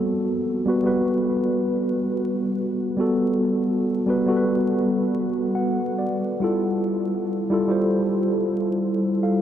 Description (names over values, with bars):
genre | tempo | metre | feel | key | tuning
hip hop | 70 BPM | 4/4 | swing 58% on 16ths | G major | A4 = 439 Hz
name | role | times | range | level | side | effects
mellow tine electric piano | solo | 0.0-9.4 s | G3 to F#5 | -20 LUFS | equal | medium stereo tremolo, cassette tape, low-pass filter, tape echo
room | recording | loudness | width
wet huge ambient reverb, RT60 7.7 s | dreamy mix soaked in reverb, vinyl crackle | -20 LUFS | side -10 dB against mid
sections
0.0-9.4 A section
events
tine electric piano fill 5.1-6.4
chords
0.0 Gmaj9; 6.4 Fmaj9